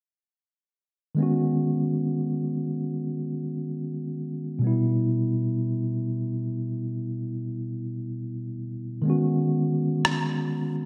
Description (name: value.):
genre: contemporary R&B.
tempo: 61 BPM.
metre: 4/4.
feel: straight.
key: B major.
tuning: A4 = 435 Hz.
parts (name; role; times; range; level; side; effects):
mellow tine electric piano; accompaniment; 1.1-10.9 s; B2 to F#4; -27 LUFS; equal; none.
electronic rim click; drums; 10.0-10.3 s; none; -29 LUFS; equal; none.
room: moderate plate reverb, RT60 2.1 s.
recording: bright 1980s-style digital production.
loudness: -27 LUFS.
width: mono.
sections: 1.2-10.9 A section.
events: none.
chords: 1.2 B69; 4.6 Em/B; 9.1 B69.